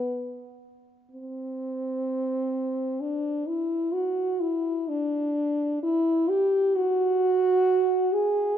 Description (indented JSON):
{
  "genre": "classical, free, expressive piece for unaccompanied French horn",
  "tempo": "58-69 BPM",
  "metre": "3/4",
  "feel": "rubato",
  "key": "unclear",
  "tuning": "A4 = 440 Hz",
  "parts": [
    { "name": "dark French horn", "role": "solo", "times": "0.0-8.6 s", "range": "B3 to Ab4", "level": "-24 LUFS", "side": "equal", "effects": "none" }
  ],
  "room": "moderate concert hall reverb, RT60 2.4 s",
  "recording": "nothing above 7.6 kHz",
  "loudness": "-23 LUFS",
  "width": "side -9 dB against mid",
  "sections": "0.0-8.6 A section",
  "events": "none",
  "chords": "none",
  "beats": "0.09 | 1.10 2.05 3.00 | 3.96 4.90 5.84 | 6.79 7.69"
}